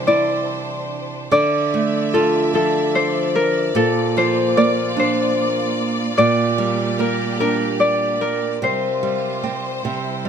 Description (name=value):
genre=children's music, lullaby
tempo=49 BPM (dotted quarters)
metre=6/8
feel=straight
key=unclear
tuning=A4 = 441 Hz
part: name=Celtic harp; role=melody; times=0.0-10.3 s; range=A4 to D5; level=-19 LUFS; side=left 3 dB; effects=plate reverb
part: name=nylon-string guitar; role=accompaniment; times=0.0-10.3 s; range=Bb2 to F4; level=-22 LUFS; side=right 5 dB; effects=none
part: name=clear studio string section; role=sustained chords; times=0.0-10.3 s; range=E3 to E5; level=-26 LUFS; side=equal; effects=none
room=moderate small room reverb, RT60 0.5 s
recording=none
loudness=-17 LUFS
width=side -7 dB against mid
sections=0.0-10.3 A section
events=none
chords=0.0 Cadd9; 1.3 Dmadd9; 3.8 Bb; 6.2 Gm/Bb; 8.6 Csus4